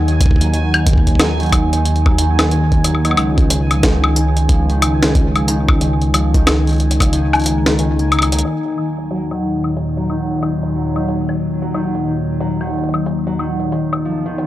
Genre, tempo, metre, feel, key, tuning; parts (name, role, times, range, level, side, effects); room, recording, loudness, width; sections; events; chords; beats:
IDM; 91 BPM; 4/4; swing 62% on 16ths; Eb minor; A4 = 440 Hz
concert harp; arpeggios; 0.0-14.5 s; Eb3 to Bb3; -19 LUFS; equal; low-pass filter, tape echo
dark detuned saw bass; bass; 0.0-8.4 s; Db2 to Eb2; -16 LUFS; equal
bubbling stepped-filter texture; texture; 0.0-8.5 s; Ab5; -27 LUFS; right 6 dB; chorus, built-in reverb
jungle sampler-style drum kit; drums; 0.1-14.5 s; hi-hat, snare drum, woodblock; -19 LUFS; left 1 dB; low-pass filter on hats, low-pass filter on perc, low-pass filter on snare, low-pass filter on room
electronic kick drum; drums; 0.2-7.1 s; -14 LUFS; equal
warbly tape-like pad; sustained chords; 9.0-14.5 s; Eb2 to F4; -23 LUFS; left 2 dB; chorus, built-in reverb, phaser
digital ambience; dry, gritty hardware recording, transformer saturation; -13 LUFS; side -14 dB against mid
0.0-8.4 A section; 8.4-14.5 B section
kick drops out 7.1-8.4; filter sweep on harp 8.4-14.5
0.0 Ebm; 3.2 Db; 8.4 Ebm; 13.7 Db7
| 0.54 1.20 1.85 2.51 | 3.17 3.83 4.49 5.15 | 5.81 6.47 7.13 7.79 | 8.45 9.11 9.77 10.43 | 11.09 11.74 12.40 13.06 | 13.72 14.38